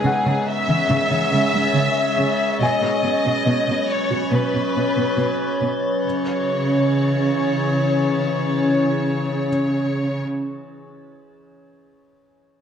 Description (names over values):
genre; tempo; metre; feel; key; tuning
cinematic; 70 BPM; 4/4; straight; C# minor; A4 = 440 Hz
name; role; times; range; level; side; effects
warm symphonic violin section; melody; 0.0-10.2 s; G#4 to E5; -23 LUFS; left 2 dB; none
metallic inharmonic drone; sustained chords; 0.0-10.2 s; E3 to C#5; -22 LUFS; left 2 dB; chorus, built-in reverb
tight sequenced synth; arpeggios; 0.0-5.7 s; C#3 to C#5; -28 LUFS; right 1 dB; chorus
warm symphonic cello section; bass; 0.0-10.2 s; B2 to C#3; -23 LUFS; right 2 dB; none
felt-muted upright piano; texture; 0.0-6.1 s; D#4 to D#6; -30 LUFS; left 2 dB; tape echo
room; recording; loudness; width
moderate concert hall reverb, RT60 1.8 s; none; -18 LUFS; side -8 dB against mid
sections
0.0-6.0 A section; 6.0-9.5 B section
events
none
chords
0.0 C#m; 2.6 Bsus2; 6.0 C#m